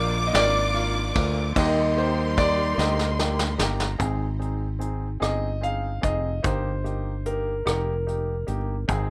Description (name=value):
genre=six-eight pop ballad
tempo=49 BPM (dotted quarters)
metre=6/8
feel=straight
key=Eb major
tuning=A4 = 440 Hz
part: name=rich studio violin section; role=second line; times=0.0-4.0 s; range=Bb5 to D6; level=-32 LUFS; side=equal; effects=plate reverb, digital delay
part: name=clear baby grand piano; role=accompaniment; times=0.0-9.1 s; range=Bb3 to Ab4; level=-35 LUFS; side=equal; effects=none
part: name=warm studio string section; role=sustained chords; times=0.0-4.0, 8.9-9.1 s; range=G3 to Bb4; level=-37 LUFS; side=equal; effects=none
part: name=fingered electric bass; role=bass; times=0.0-9.1 s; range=F1 to Eb2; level=-29 LUFS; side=equal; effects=none
part: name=clear grand piano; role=melody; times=0.3-8.6 s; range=Bb4 to F5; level=-30 LUFS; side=equal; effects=plate reverb, digital delay
part: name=soft brush drum kit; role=drums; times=0.3-9.1 s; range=hi-hat, kick drum, ride cymbal, rim click, snare drum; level=-30 LUFS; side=equal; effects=none
room=moderate small room reverb, RT60 0.5 s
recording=rough home demo mix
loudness=-25 LUFS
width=mono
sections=0.0-4.0 A section; 4.0-9.1 B section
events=drum fill 2.8-4.0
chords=0.0 Bb; 1.6 Eb; 4.0 Ab; 6.4 Eb/G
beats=0.34 | 1.56 2.78 | 4.00 5.22 | 6.45 7.67 | 8.89